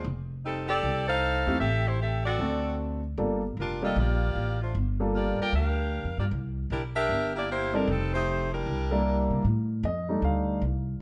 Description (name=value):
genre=jazz, big band swing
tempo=153 BPM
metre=4/4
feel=swing 64% on 8ths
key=F major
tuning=A4 = 441 Hz
part: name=clear saxophone section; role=melody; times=0.0-9.3 s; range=G3 to G5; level=-31 LUFS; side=equal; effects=none
part: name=upright bass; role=bass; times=0.0-11.0 s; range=F1 to C3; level=-32 LUFS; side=equal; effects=none
part: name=warm upright piano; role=accompaniment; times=1.5-10.6 s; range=G3 to F5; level=-32 LUFS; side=equal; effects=none
room=moderate large studio reverb, RT60 1.1 s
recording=nothing above 10.3 kHz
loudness=-28 LUFS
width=mono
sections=0.0-9.4 A section; 9.4-11.0 B section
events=upright piano solo 9.4-11.0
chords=0.0 F13; 1.6 Am7; 2.4 D7; 3.2 Gm7; 6.3 C9; 7.9 F9; 8.7 C9; 9.4 F13